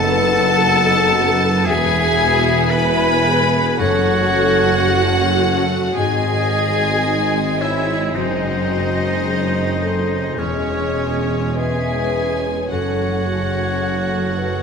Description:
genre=classical, slow romantic movement for symphony orchestra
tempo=55 BPM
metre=4/4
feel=rubato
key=unclear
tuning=A4 = 440 Hz
part: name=rich chamber violin section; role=melody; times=0.0-14.6 s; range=C#5 to B5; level=-23 LUFS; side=left 3 dB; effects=none
part: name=clear oboe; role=second line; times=0.0-14.6 s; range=C#4 to B4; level=-24 LUFS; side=equal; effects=none
part: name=concert flute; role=second line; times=0.0-14.6 s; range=G#4 to G#5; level=-24 LUFS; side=left 2 dB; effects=none
part: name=warm studio violin section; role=second line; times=0.0-14.6 s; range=G#3 to E4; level=-27 LUFS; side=left 1 dB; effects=none
part: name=rich studio viola section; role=accompaniment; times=0.0-14.6 s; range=C#4 to B4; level=-25 LUFS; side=right 2 dB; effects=none
part: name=mellow French horn section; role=sustained chords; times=0.0-14.6 s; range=D#4 to B4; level=-24 LUFS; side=left 2 dB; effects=none
part: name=concert harp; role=arpeggios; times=0.0-14.6 s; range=E2 to C#5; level=-28 LUFS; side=left 5 dB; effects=none
part: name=mellow tuba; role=bass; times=0.0-14.6 s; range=E1 to G#1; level=-25 LUFS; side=right 3 dB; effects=none
part: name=rich studio double bass section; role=bass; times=0.0-14.6 s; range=E1 to G#1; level=-26 LUFS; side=right 3 dB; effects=none
part: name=rich symphonic cello section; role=bass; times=0.0-14.6 s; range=E2 to G#2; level=-26 LUFS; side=right 2 dB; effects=none
room=wet recital hall reverb, RT60 1.6 s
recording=minimal, uncompressed stereo recording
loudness=-15 LUFS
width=side -6 dB against mid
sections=0.0-14.6 A section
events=none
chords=0.0 B7/F#; 1.7 E; 3.8 F#m; 6.0 G#; 8.2 G#7/F#; 10.4 C#m/E; 12.7 F#m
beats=0.59 1.66 2.72 | 3.79 4.88 5.96 7.05 | 8.16 9.26 10.38 11.57 | 12.70 13.80

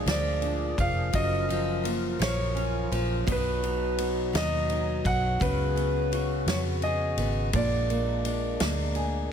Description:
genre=six-eight pop ballad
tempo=56 BPM (dotted quarters)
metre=6/8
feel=straight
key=F# major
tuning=A4 = 438 Hz
part: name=flamenco guitar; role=accompaniment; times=0.0-9.3 s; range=F#2 to G#4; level=-31 LUFS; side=equal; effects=double-tracked left and right
part: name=percussive tonewheel organ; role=sustained chords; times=0.0-9.3 s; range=C#3 to A#4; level=-35 LUFS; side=left 1 dB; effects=chorus vibrato, slow rotary speaker
part: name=vintage muted fingered electric bass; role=bass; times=0.0-9.3 s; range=E#1 to E#2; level=-30 LUFS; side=equal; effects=none
part: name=warm concert grand piano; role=melody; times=0.1-8.9 s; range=B4 to F#5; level=-31 LUFS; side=equal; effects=none
part: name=natural country drum kit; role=drums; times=0.1-9.1 s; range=kick drum, ride cymbal, snare drum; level=-33 LUFS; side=equal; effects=none
room=light reverb, studio reverb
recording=none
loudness=-25 LUFS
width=side -8 dB against mid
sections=0.0-9.3 A section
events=none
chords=0.0 A#7; 1.1 F#maj7; 3.3 B; 5.4 C#7sus4; 7.5 A#7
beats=0.06 | 1.13 2.20 | 3.27 4.33 | 5.40 6.47 | 7.54 8.61

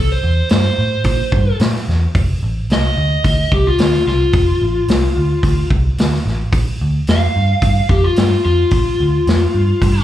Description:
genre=blues rock power trio and southern rock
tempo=110 BPM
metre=4/4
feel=straight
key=unclear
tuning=A4 = 440 Hz
part: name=overdriven slide guitar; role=melody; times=0.0-10.0 s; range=F4 to F5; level=-18 LUFS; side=left 2 dB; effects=slapback echo
part: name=vintage muted picked electric bass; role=bass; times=0.0-10.0 s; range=F1 to Bb2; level=-16 LUFS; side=equal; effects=none
part: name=vintage drum kit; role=drums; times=0.5-9.9 s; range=hi-hat, kick drum, snare drum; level=-18 LUFS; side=equal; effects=none
room=studio ambience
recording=live gig heard through the venue's PA, club reverb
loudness=-13 LUFS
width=side -12 dB against mid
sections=0.0-10.0 A section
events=electric slide guitar solo 0.0-10.0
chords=0.0 C; 2.2 F; 6.5 Bb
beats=0.51 1.06 1.60 | 2.15 2.70 3.25 3.79 | 4.34 4.89 5.44 5.99 | 6.53 7.08 7.63 8.18 | 8.73 9.27 9.82

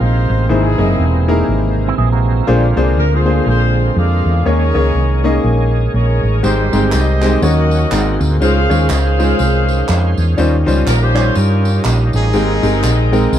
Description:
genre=uptempo gospel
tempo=122 BPM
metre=4/4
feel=swing 59% on 8ths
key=Ab major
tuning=A4 = 439 Hz
part: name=warm horn section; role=melody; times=0.0-13.4 s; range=C4 to F5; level=-20 LUFS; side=left 1 dB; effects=none
part: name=bright tonewheel organ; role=sustained chords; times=0.0-13.4 s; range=C3 to G5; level=-21 LUFS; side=right 2 dB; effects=overdrive, chorus vibrato, slow rotary speaker
part: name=hollow-body short-scale fingered electric bass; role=bass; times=0.0-13.4 s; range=E1 to G2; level=-14 LUFS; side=equal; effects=none
part: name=bright grand piano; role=accompaniment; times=0.5-13.4 s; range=G#2 to G5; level=-18 LUFS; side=left 2 dB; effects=none
part: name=electric guitar with an envelope filter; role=second line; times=1.9-2.5 s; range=C4 to Bb4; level=-24 LUFS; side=right 11 dB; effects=spring reverb
part: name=tambourine and handclaps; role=percussion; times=6.4-13.4 s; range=none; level=-26 LUFS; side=right 2 dB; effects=none
room=little or no reverb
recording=dark, warm production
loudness=-11 LUFS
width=side -10 dB against mid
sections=0.0-13.4 A section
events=none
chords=0.0 Ab69; 0.5 C7alt; 2.5 Bb9; 4.5 Eb7sus4; 6.4 Abmaj7; 7.4 Ebm7; 7.9 Ab9; 8.4 Dbmaj9; 10.4 Eb13; 12.3 Abmaj9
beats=0.01 | 0.50 1.00 1.49 1.99 | 2.48 2.98 3.47 3.96 | 4.46 4.95 5.45 5.94 | 6.43 6.93 7.42 7.92 | 8.41 8.90 9.39 9.89 | 10.38 10.87 11.36 11.86 | 12.35 12.84 13.33

